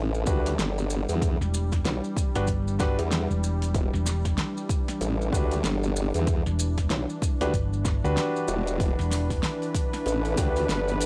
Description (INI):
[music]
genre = glitch hop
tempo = 95 BPM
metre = 4/4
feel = swing 60% on 16ths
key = E minor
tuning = A4 = 438 Hz
[part]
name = warm analog pad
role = sustained chords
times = 0.0-11.1 s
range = E3 to B4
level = -34 LUFS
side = equal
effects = chorus, sidechain pumping
[part]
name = formant-sweep wobble bass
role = bass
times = 0.0-11.1 s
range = E1 to E2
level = -29 LUFS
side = equal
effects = chorus, tube saturation
[part]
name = maracas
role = percussion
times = 0.1-11.1 s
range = none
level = -41 LUFS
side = equal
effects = none
[part]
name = warm concert grand piano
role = stabs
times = 0.3-10.6 s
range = D4 to B4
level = -34 LUFS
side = equal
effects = sidechain pumping, analog delay
[part]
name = electronic kick drum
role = drums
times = 0.3-10.5 s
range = none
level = -30 LUFS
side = equal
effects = studio reverb
[part]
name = pop drum kit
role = drums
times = 0.5-11.1 s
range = hi-hat, snare drum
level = -35 LUFS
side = equal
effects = studio reverb
[part]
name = hollow-body short-scale fingered electric bass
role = bass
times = 1.4-9.4 s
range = E1 to D2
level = -29 LUFS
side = equal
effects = none
[sound]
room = little or no reverb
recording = dry, gritty hardware recording, cassette tape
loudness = -26 LUFS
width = mono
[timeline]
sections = 0.0-11.1 A section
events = none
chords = 0.0 Em7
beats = 0.59 | 1.22 1.85 2.48 3.12 | 3.75 4.38 5.01 5.64 | 6.27 6.91 7.54 8.17 | 8.80 9.43 10.06 10.70